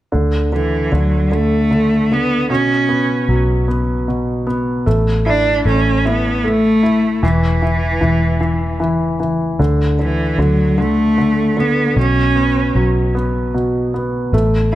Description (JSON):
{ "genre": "six-eight pop ballad", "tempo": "51 BPM (dotted quarters)", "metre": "6/8", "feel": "straight", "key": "D major", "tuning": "A4 = 439 Hz", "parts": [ { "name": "warm concert grand piano", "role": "accompaniment", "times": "0.1-14.8 s", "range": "B2 to E4", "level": "-18 LUFS", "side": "equal", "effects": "none" }, { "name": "vintage muted fingered electric bass", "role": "bass", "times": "0.1-14.8 s", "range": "E1 to D2", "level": "-18 LUFS", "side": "equal", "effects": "none" }, { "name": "warm cello", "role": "melody", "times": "0.5-12.8 s", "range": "E3 to D4", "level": "-16 LUFS", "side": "right 1 dB", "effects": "tape echo" } ], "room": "light reverb, studio reverb", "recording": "none", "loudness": "-13 LUFS", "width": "side -14 dB against mid", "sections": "0.1-14.8 A section", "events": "none", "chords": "0.1 D5; 2.5 Bsus2; 4.9 A5; 7.2 N.C.; 9.6 D5; 12.0 Bsus2", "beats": "| 0.13 1.32 | 2.50 3.68 | 4.86 6.04 | 7.23 8.41 | 9.59 10.78 | 11.96 13.15 | 14.33" }